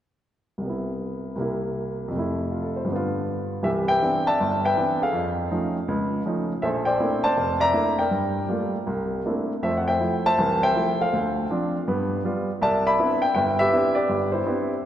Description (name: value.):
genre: solo jazz.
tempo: 161 BPM.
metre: 4/4.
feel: swing 65% on 8ths, rubato.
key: C major.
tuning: A4 = 441 Hz.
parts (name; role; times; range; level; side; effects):
warm grand piano; solo; 0.6-14.9 s; F1 to B5; -21 LUFS; equal; none.
room: wet church reverb, RT60 2.9 s.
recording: recorded in a church or concert hall.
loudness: -21 LUFS.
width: side -11 dB against mid.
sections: 0.6-3.6 A section; 3.6-14.9 B section.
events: none.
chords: 0.6 Cmaj7; 1.4 C7; 2.1 Fmaj7; 2.9 G7; 3.6 Cmaj9; 5.1 F7alt; 6.6 Bbmaj9#11; 8.1 Gm9; 8.9 C13; 9.6 Fmaj7; 11.1 Dm7; 11.9 G7; 12.6 Cmaj9.